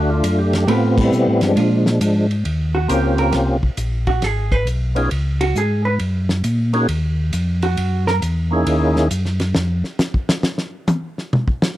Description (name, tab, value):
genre	soul jazz organ trio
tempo	135 BPM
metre	4/4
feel	swing 66% on 8ths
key	unclear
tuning	A4 = 440 Hz
part	percussive tonewheel organ	melody	0.0-9.1 s	F3 to Ab4	-18 LUFS	equal	slow rotary speaker, overdrive, chorus vibrato
part	hollow-body jazz guitar	accompaniment	0.0-8.2 s	Ab3 to B4	-21 LUFS	right 3 dB	none
part	mellow tonewheel organ	bass	0.0-9.8 s	Ab1 to B2	-18 LUFS	equal	chorus vibrato, slow rotary speaker
part	warm soul drum kit	drums	0.2-11.7 s	crash cymbal, hi-hat, kick drum, ride cymbal, snare drum, toms	-23 LUFS	equal	none
room	small room ambience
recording	dry, close 1970s-style studio recording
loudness	-16 LUFS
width	side -14 dB against mid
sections	0.0-2.5 A section; 2.5-11.8 B section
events	band accent 0.9; hollow-body jazz guitar solo 2.5-11.8; drum solo 9.5-11.8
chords	0.0 Bm7 (rootless); 0.7 Am9; 1.6 Bb7; 2.5 Eb13; 4.2 Abm; 5.1 Db5; 6.0 Gb6; 7.8 Gb13; 9.5 N.C.